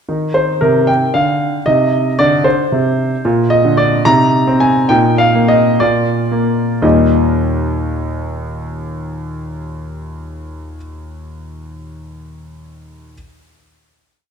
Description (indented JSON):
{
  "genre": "classical-period piano sonatina",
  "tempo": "56-77 BPM (dotted quarters)",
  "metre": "6/8",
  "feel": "rubato",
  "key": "Eb major",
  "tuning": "A4 = 440 Hz",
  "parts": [
    { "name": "clear concert grand piano", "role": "solo", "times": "0.1-13.1 s", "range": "Eb2 to Bb5", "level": "-13 LUFS", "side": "equal", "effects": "none" }
  ],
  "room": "moderate recital hall reverb, RT60 1.7 s",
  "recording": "none",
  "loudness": "-11 LUFS",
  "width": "side -6 dB against mid",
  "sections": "0.1-6.8 theme; 6.8-10.9 final chord",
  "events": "slowing down 2.5-6.8",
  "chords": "0.1 Cmadd9; 3.2 Bb; 4.1 Cm7; 4.9 Eb5/Bb; 5.8 Bb; 6.8 Eb",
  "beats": "| 0.08 0.89 | 1.67 2.46 | 3.24 4.05 | 4.89 5.81 | 6.84 7.86 | 8.87 9.89"
}